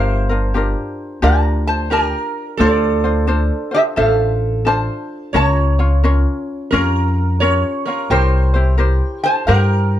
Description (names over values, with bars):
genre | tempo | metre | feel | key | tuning
Hawaiian | 87 BPM | 4/4 | swing 64% on 8ths | unclear | A4 = 443 Hz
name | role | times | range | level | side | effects
metal-body resonator slide guitar | melody | 0.0-10.0 s | F4 to Bb5 | -19 LUFS | equal | none
sitar | second line | 0.0-10.0 s | A4 to Db5 | -22 LUFS | right 3 dB | none
ukulele | accompaniment | 0.0-10.0 s | Db4 to Db5 | -22 LUFS | left 3 dB | none
upright bass | bass | 0.0-10.0 s | G1 to G2 | -16 LUFS | equal | none
room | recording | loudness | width
light reverb | none | -14 LUFS | side -12 dB against mid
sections
0.0-10.0 A section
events
none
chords
0.0 Gm7; 2.6 Dm7; 5.3 Bbm/Db; 8.1 C7